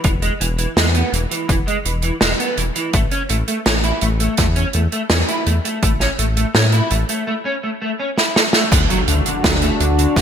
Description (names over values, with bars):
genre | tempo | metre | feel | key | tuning
synthwave | 83 BPM | 4/4 | straight | unclear | A4 = 439 Hz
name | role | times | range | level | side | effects
electric guitar at the edge of break-up | riff | 0.0-10.2 s | D3 to E4 | -22 LUFS | right 1 dB | ensemble chorus, ping-pong delay
round analog bass | bass | 0.0-10.2 s | E1 to A2 | -18 LUFS | equal | sidechain pumping
electronic kick drum | drums | 0.0-10.2 s | none | -19 LUFS | left 1 dB | overdrive
open jazz drum kit | drums | 0.0-10.2 s | crash cymbal, hi-hat, snare drum | -19 LUFS | right 2 dB | none
warm analog pad | sustained chords | 8.7-10.2 s | D4 to A4 | -21 LUFS | left 1 dB | chorus, sidechain pumping
impact | sound effects | 8.7-10.2 s | none | -25 LUFS | left 1 dB | none
room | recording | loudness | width
moderate lush hall reverb, RT60 1.9 s, small room reverb | bright 1980s-style digital production | -15 LUFS | side -8 dB against mid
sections
0.0-8.7 A section; 8.7-10.2 B section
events
drum fill 8.2-8.7; impact 8.7-10.2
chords
0.0 E; 2.9 A; 8.7 D